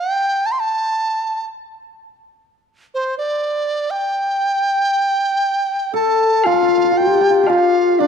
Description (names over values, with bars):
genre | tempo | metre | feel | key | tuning
chinese traditional, Chinese chamber ensemble | 60 BPM | 2/4 | straight | G shang mode | A4 = 443 Hz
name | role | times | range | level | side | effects
reedy large dizi | melody | 0.0-8.1 s | C5 to C6 | -18 LUFS | right 1 dB | none
hammered dulcimer | second line | 5.9-8.1 s | D4 to A4 | -19 LUFS | right 6 dB | none
mellow hollow low xiao | second line | 5.9-8.1 s | D4 to A4 | -15 LUFS | left 6 dB | none
woodblock | percussion | 6.4-7.7 s | none | -26 LUFS | right 2 dB | none
room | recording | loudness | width
moderate concert hall reverb, RT60 2.2 s | dark, warm production | -15 LUFS | side -7 dB against mid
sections
0.0-6.4 A section; 6.4-8.1 B section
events
none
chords
none